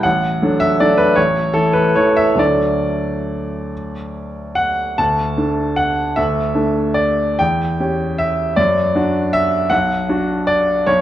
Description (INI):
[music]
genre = classical, piano waltz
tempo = 130-168 BPM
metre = 3/4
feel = rubato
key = D major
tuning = A4 = 439 Hz
[part]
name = clear baby grand piano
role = solo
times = 0.0-11.0 s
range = A1 to A5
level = -14 LUFS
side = equal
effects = none
[sound]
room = moderate recital hall reverb, RT60 1.5 s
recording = dark, warm production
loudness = -14 LUFS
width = side -12 dB against mid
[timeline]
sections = 0.0-5.0 A section; 5.0-11.0 B section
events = none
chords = 0.1 D/A; 1.2 A; 2.4 D; 7.4 C#dim/E; 8.6 D/F#; 9.7 Bm